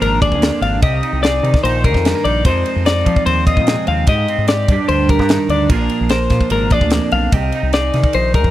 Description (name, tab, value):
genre	math rock and midwest emo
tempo	148 BPM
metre	4/4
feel	straight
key	unclear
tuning	A4 = 440 Hz
part	twelve-string electric guitar	accompaniment	0.0-8.5 s	F2 to Bb4	-20 LUFS	right 6 dB	none
part	twelve-string electric guitar	arpeggios	0.0-8.5 s	Bb4 to F5	-18 LUFS	left 5 dB	tape echo
part	growling fingered electric bass	bass	0.0-8.5 s	Ab1 to F3	-18 LUFS	equal	overdrive
part	crisp fusion drum kit	drums	0.0-8.5 s	kick drum, ride cymbal, snare drum	-16 LUFS	equal	none
room	small room ambience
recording	dry, close 1970s-style studio recording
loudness	-13 LUFS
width	side -14 dB against mid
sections	0.0-8.5 A section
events	none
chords	0.0 Bb7; 0.8 Cm7; 2.5 Fm7; 4.1 Abmaj7; 4.7 Ebmaj7; 5.7 Bb7; 7.3 Cm7